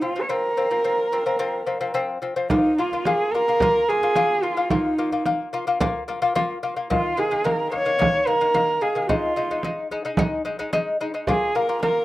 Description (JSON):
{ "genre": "mongolian traditional, Mongolian folk", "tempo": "109 BPM", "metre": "4/4", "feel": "straight", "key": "Bb minor", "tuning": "A4 = 442 Hz", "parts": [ { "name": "dark horsehead fiddle", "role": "melody", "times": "0.0-12.0 s", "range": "Eb4 to Db5", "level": "-21 LUFS", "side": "right 1 dB", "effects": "slapback echo" }, { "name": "lute", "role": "arpeggios", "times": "0.0-12.0 s", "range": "Eb3 to F4", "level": "-25 LUFS", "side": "left 3 dB", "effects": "slapback echo" }, { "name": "frame drum", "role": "percussion", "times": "2.5-12.0 s", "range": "none", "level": "-25 LUFS", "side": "right 2 dB", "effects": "none" } ], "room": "little or no reverb", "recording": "recorded outdoors, with no room sound", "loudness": "-20 LUFS", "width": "side -16 dB against mid", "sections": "0.0-2.5 A section; 2.5-12.0 B section", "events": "none", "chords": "0.0 F5; 2.5 Bb5; 6.9 Eb5; 9.1 Ab5; 11.3 Bb5", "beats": "| 0.30 0.85 1.40 1.95 | 2.51 3.06 3.61 4.16 | 4.71 5.25 5.80 6.35 | 6.90 7.45 8.00 8.55 | 9.10 9.64 10.19 10.74 | 11.29 11.84" }